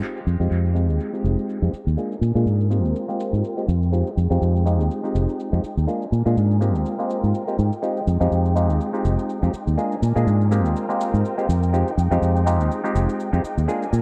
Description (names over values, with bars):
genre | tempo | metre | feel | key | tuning
filtered disco house | 123 BPM | 4/4 | swing 56% on 16ths | F minor | A4 = 439 Hz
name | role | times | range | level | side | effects
clav | accompaniment | 0.0-13.9 s | Ab3 to Ab4 | -27 LUFS | equal | phaser, low-pass filter, dub echo
bright studio string section | sustained chords | 0.0-14.0 s | Ab3 to Ab5 | -34 LUFS | equal | low-pass filter
shaker | drums | 0.0-14.0 s | none | -49 LUFS | equal | low-pass filter on hats, studio ambience, low-pass filter on snare, low-pass filter on perc, dub echo
egg shaker | percussion | 0.0-14.0 s | none | barely audible | none | none
fingered electric bass | bass | 0.3-14.0 s | F1 to Bb2 | -21 LUFS | equal | low-pass filter
room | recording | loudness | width
light reverb, digital ambience | echo-heavy mix | -21 LUFS | mono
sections
0.0-14.0 A section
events
filter sweep 0.0-14.0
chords
0.0 Fm9; 2.0 Bb7; 2.7 Abmaj13; 3.9 Fm9; 5.9 Bb7; 6.6 Abmaj13; 7.8 Fm9; 9.8 Bb7; 10.5 Abmaj13; 11.7 Fm9